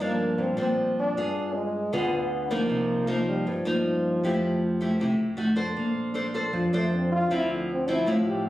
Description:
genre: bossa nova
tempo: 156 BPM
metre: 4/4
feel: straight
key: unclear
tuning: A4 = 439 Hz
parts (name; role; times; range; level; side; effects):
- warm trombone; melody; 0.0-8.5 s; F3 to G4; -28 LUFS; equal; none
- nylon-string guitar; accompaniment; 0.0-8.5 s; G2 to C5; -26 LUFS; equal; none
- fingered electric bass; bass; 0.0-8.5 s; A1 to G2; -35 LUFS; right 1 dB; none
room: moderate studio reverb, RT60 0.5 s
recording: recorded on a phone in the room, studio reverb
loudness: -24 LUFS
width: side -15 dB against mid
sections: 0.0-5.8 A section; 5.8-8.5 B section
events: trombone solo 5.8-8.5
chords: 0.0 Ebmaj9/G (rootless); 1.1 G7b9; 2.7 Cm7; 4.2 Fmaj9; 5.4 F7b9; 5.8 Bbmaj9; 7.3 Dm9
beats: 0.38 0.76 | 1.15 1.53 1.92 2.30 | 2.69 3.07 3.46 3.84 | 4.23 4.61 5.00 5.38 | 5.76 6.15 6.54 6.92 | 7.30 7.69 8.07 8.46

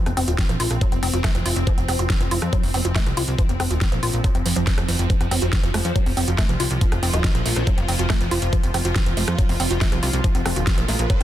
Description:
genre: psychedelic trance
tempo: 140 BPM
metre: 4/4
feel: straight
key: unclear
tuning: A4 = 439 Hz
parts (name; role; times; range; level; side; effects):
- evolving wavetable pad; sustained chords; 0.0-11.2 s; F3 to F4; -29 LUFS; equal; phaser, built-in reverb, sidechain pumping
- woody wave-folded pluck; riff; 0.1-11.2 s; F3 to Gb4; -27 LUFS; moving between left 3 dB and right 4 dB; chorus, auto-pan, sidechain pumping, dub echo
- plucky analog bass; bass; 0.1-11.2 s; Eb1 to F2; -23 LUFS; equal; none
- big-room dance drum kit; drums; 0.1-11.2 s; hi-hat, rim click, snare drum; -27 LUFS; right 1 dB; overdrive
- vowel-sweep wobble bass; second line; 0.2-0.3, 5.3-7.7 s; C4 to F4; -35 LUFS; left 2 dB; none
- electronic kick drum; drums; 0.4-11.2 s; none; -20 LUFS; equal; none
- riser; sound effects; 9.9-11.2 s; none; -35 LUFS; right 3 dB; none
room: little or no reverb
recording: dense, heavily limited modern master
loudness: -18 LUFS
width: side -12 dB against mid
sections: 0.0-11.2 A section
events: none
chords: 0.0 F5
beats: 0.39 0.81 1.24 | 1.67 2.10 2.53 2.96 | 3.38 3.81 4.24 4.67 | 5.10 5.53 5.96 6.38 | 6.81 7.24 7.67 8.10 | 8.53 8.96 9.38 9.81 | 10.24 10.67 11.10

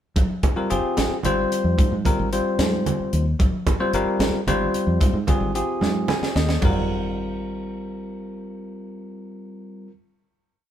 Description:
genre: electric jazz fusion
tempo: 74 BPM (dotted quarters)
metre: 6/8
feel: straight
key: Ab major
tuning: A4 = 438 Hz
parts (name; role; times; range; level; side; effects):
- fingered electric bass; bass; 0.2-9.9 s; G1 to Ab2; -25 LUFS; equal; none
- crisp fusion drum kit; drums; 0.2-6.7 s; crash cymbal, hi-hat, kick drum, snare drum, toms; -22 LUFS; equal; none
- congas; percussion; 0.2-6.9 s; none; -28 LUFS; right 3 dB; none
- bell-like tine electric piano; accompaniment; 0.6-9.9 s; G3 to Ab5; -24 LUFS; left 2 dB; none
room: light reverb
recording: band playing live in one room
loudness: -19 LUFS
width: side -10 dB against mid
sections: 0.2-6.6 groove; 6.6-9.8 final chord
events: drum fill 5.8-6.6; tine electric piano fill 5.8-6.6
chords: 0.2 Abmaj9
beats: | 0.17 0.97 | 1.78 2.59 | 3.40 4.20 | 5.01 5.82 | 6.62 7.43 | 8.24 9.04

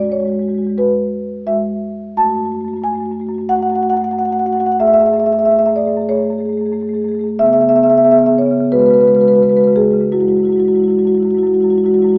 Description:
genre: classical, contemporary piece for solo marimba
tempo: 91 BPM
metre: 4/4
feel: uneven beats, rubato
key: F# minor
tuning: A4 = 440 Hz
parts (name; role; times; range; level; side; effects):
- marimba with soft mallets; solo; 0.0-12.2 s; E2 to A5; -11 LUFS; equal; none
room: wet recital hall reverb, RT60 1.4 s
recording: small speaker sound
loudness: -11 LUFS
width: side -36 dB against mid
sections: 0.0-12.2 A section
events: none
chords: 0.0 Eadd9; 2.2 F#m; 4.8 Amaj7/F#; 7.4 C#m7; 8.7 C#7sus4; 10.1 F#sus2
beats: 0.13 0.78 1.47 | 2.17 2.84 3.49 4.14 | 4.79 5.44 6.09 6.74 | 7.40 8.06 8.72 9.41 | 10.12 10.85 11.58

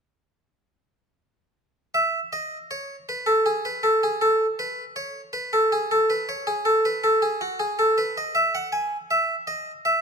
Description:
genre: classical, baroque-style two-part invention for harpsichord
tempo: 53 BPM (dotted quarters)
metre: 12/8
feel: straight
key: E major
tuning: A4 = 441 Hz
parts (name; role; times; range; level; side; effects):
- harpsichord; solo; 1.9-10.0 s; F#4 to G#5; -21 LUFS; equal; none
room: moderate recital hall reverb, RT60 1.8 s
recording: close, detailed microphones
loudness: -21 LUFS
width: side -5 dB against mid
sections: 2.0-10.0 A section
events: none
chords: none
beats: | 1.95 3.09 4.22 5.35 | 6.47 7.60 8.73 9.85

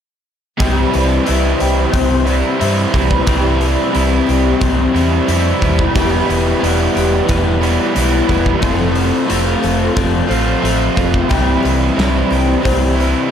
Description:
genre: rock, shoegaze and dream pop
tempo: 90 BPM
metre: 4/4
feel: straight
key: C major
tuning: A4 = 441 Hz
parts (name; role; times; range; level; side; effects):
- fingerpicked twelve-string acoustic guitar; arpeggios; 0.6-13.3 s; E4 to E5; -24 LUFS; left 7 dB; wide subtle chorus, analog delay
- overdriven electric guitar; riff; 0.6-13.3 s; C3 to F4; -18 LUFS; left 8 dB; wide subtle chorus
- raw garage guitar; riff; 0.6-13.3 s; E2 to F4; -18 LUFS; right 11 dB; overdrive, reverse reverb
- fingered electric bass; bass; 0.6-13.1 s; E1 to G2; -18 LUFS; equal; none
- big rock drum kit; drums; 0.6-13.1 s; hi-hat, kick drum, snare drum; -21 LUFS; equal; none
room: light reverb, small room ambience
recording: none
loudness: -12 LUFS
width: side -8 dB against mid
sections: 0.6-13.3 A section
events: none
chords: 0.6 Cmaj7; 6.0 Em; 8.6 Fmaj7; 11.3 Cmaj7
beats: | 0.60 1.27 1.94 2.61 | 3.28 3.95 4.62 5.28 | 5.95 6.62 7.29 7.96 | 8.63 9.30 9.97 10.64 | 11.31 11.98 12.65

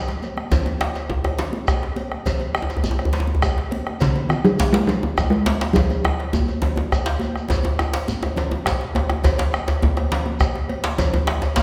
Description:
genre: west african traditional, West African drum ensemble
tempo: 138 BPM (dotted quarters)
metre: 12/8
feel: straight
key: unclear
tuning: A4 = 438 Hz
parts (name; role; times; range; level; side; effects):
- talking drum; melody; 0.0-0.2, 4.0-7.2 s; C#3 to G#3; -22 LUFS; equal; none
- bombo; percussion; 0.1-11.6 s; none; -27 LUFS; equal; none
- congas; percussion; 0.1-11.6 s; none; -31 LUFS; equal; none
- djembe; percussion; 0.1-11.6 s; none; -31 LUFS; equal; none
- shekere; percussion; 0.1-11.6 s; none; -37 LUFS; equal; none
- cowbell; percussion; 0.2-11.6 s; none; -34 LUFS; equal; none
- djembe; percussion; 0.5-11.6 s; none; -25 LUFS; equal; none
room: wet recital hall reverb, RT60 1.4 s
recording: recorded in a church or concert hall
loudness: -21 LUFS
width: mono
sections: 0.0-7.5 A section; 7.5-11.6 B section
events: drum fill 0.0-0.5, 5.8-7.5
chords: none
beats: 0.08 | 0.52 0.95 1.39 1.83 | 2.26 2.70 3.13 3.57 | 4.01 4.45 4.88 5.32 | 5.75 6.19 6.63 7.06 | 7.50 7.93 8.37 8.81 | 9.24 9.68 10.12 10.55 | 10.99 11.42

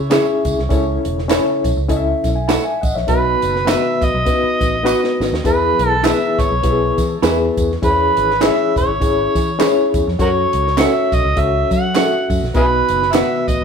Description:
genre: uptempo 1960s-style soul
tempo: 102 BPM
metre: 4/4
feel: swing 58% on 8ths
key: E major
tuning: A4 = 440 Hz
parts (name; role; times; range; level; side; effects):
- vintage muted fingered electric bass; bass; 0.0-13.6 s; E1 to F#3; -22 LUFS; right 1 dB; none
- barky reed electric piano; accompaniment; 0.1-13.6 s; B2 to A5; -18 LUFS; left 3 dB; overdrive, medium tremolo
- semi-hollow electric guitar; stabs; 0.1-13.3 s; C#4 to F#5; -21 LUFS; right 6 dB; vibrato effect
- compact cocktail drum kit; drums; 0.1-13.6 s; hi-hat, kick drum, snare drum; -21 LUFS; right 1 dB; none
- handclaps and tambourine; percussion; 0.1-13.6 s; none; -31 LUFS; equal; none
- overdriven harmonica; melody; 3.1-13.6 s; E4 to F#5; -19 LUFS; right 2 dB; tape echo
room: wet studio reverb, RT60 0.7 s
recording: band playing live in one room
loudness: -14 LUFS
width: side -6 dB against mid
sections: 0.0-13.6 A section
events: drum fill 4.9-5.5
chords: 0.0 C#m; 0.7 A; 3.1 B; 5.5 E; 7.8 C#m; 10.2 F#m; 12.6 B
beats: 0.11 | 0.71 1.31 1.90 2.50 | 3.09 3.68 4.28 4.87 | 5.46 6.05 6.64 7.24 | 7.83 8.42 9.01 9.60 | 10.19 10.78 11.37 11.96 | 12.55 13.14

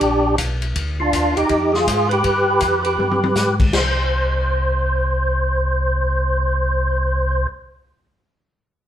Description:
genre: soul jazz organ trio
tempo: 161 BPM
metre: 4/4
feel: swing 64% on 8ths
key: unclear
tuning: A4 = 440 Hz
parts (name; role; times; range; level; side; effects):
- percussive tonewheel organ; melody; 0.0-7.5 s; D4 to C5; -18 LUFS; equal; slow rotary speaker, overdrive, chorus vibrato
- mellow tonewheel organ; bass; 0.0-7.5 s; A#1 to Ab2; -21 LUFS; equal; slow rotary speaker
- vintage drum kit; drums; 0.0-3.8 s; crash cymbal, hi-hat, kick drum, ride cymbal, snare drum, toms; -23 LUFS; left 2 dB; none
room: moderate studio reverb, RT60 0.8 s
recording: band playing live in one room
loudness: -16 LUFS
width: side -10 dB against mid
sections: 0.8-3.7 A section; 3.7-6.7 B section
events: drum fill 3.0-3.4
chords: 0.0 G(#9); 0.8 Ddim; 2.2 G7b9; 3.7 N.C.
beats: 0.01 0.38 | 0.75 1.12 1.50 1.87 | 2.24 2.61 2.98 3.36 | 3.73 4.10 4.47 4.85 | 5.22 5.59 5.96 6.33

